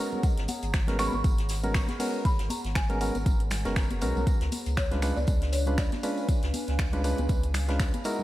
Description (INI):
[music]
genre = deep house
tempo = 119 BPM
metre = 4/4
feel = swing 56% on 16ths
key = unclear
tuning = A4 = 440 Hz
[part]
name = percussive organ stab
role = stabs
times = 0.0-8.2 s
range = G#3 to B4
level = -32 LUFS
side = equal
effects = chorus, sidechain pumping, tape echo
[part]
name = warbly tape-like pad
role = texture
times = 0.0-8.2 s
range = D4 to A#5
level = -40 LUFS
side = equal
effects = chorus, built-in reverb, sidechain pumping
[part]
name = congas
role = percussion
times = 0.1-8.2 s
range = none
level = -39 LUFS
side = left 1 dB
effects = sidechain pumping on perc
[part]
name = tambourine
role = percussion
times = 0.1-8.2 s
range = none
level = -46 LUFS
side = right 2 dB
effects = none
[part]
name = buzzing marimba with soft mallets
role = melody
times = 0.2-7.5 s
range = C#5 to C#6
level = -37 LUFS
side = equal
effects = diffuse ambient delay
[part]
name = deep house drum kit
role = drums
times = 0.2-8.2 s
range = finger snaps, hi-hat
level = -37 LUFS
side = equal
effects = none
[part]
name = electronic kick drum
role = drums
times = 0.2-7.9 s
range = none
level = -26 LUFS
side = equal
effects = none
[part]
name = jazz brush drum kit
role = drums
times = 0.2-8.2 s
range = hi-hat, snare drum, tambourine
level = -43 LUFS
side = left 1 dB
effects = high-pass filter on hats, high-pass filter on snare, high-pass filter on perc, high-pass filter on room
[part]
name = warm sub bass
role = bass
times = 0.4-7.9 s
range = F#1 to C#2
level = -30 LUFS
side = equal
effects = sidechain pumping
[sound]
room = light reverb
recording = vinyl crackle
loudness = -25 LUFS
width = side -15 dB against mid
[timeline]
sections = 0.0-8.2 A section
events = none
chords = 0.0 G#m11; 4.3 C#7b9